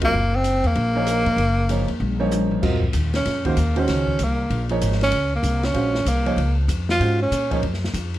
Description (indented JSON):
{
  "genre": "modal jazz",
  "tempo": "192 BPM",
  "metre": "4/4",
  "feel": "swing 63% on 8ths",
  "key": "Bb minor",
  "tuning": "A4 = 441 Hz",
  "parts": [
    { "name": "breathy tenor saxophone", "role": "melody", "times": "0.0-7.6 s", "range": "Bb3 to F4", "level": "-22 LUFS", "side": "equal", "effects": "none" },
    { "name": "warm grand piano", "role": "accompaniment", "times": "0.0-7.6 s", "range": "Eb3 to F5", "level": "-25 LUFS", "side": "right 3 dB", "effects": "none" },
    { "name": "upright bass", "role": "bass", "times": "0.0-8.2 s", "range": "Gb1 to Bb2", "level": "-22 LUFS", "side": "equal", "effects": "none" },
    { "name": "open jazz drum kit", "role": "drums", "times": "0.0-8.2 s", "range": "crash cymbal, hi-hat, kick drum, ride cymbal, rim click, snare drum, toms", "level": "-28 LUFS", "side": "left 2 dB", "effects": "none" }
  ],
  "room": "light reverb",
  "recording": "none",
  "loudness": "-18 LUFS",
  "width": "side -14 dB against mid",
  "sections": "0.0-2.6 A section; 2.6-8.2 B section",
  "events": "drum fill 2.0-2.6; tenor saxophone solo 2.6-8.2",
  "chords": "0.0 Ebm9; 2.6 Bbm9; 7.6 Ebmadd9 (rootless)"
}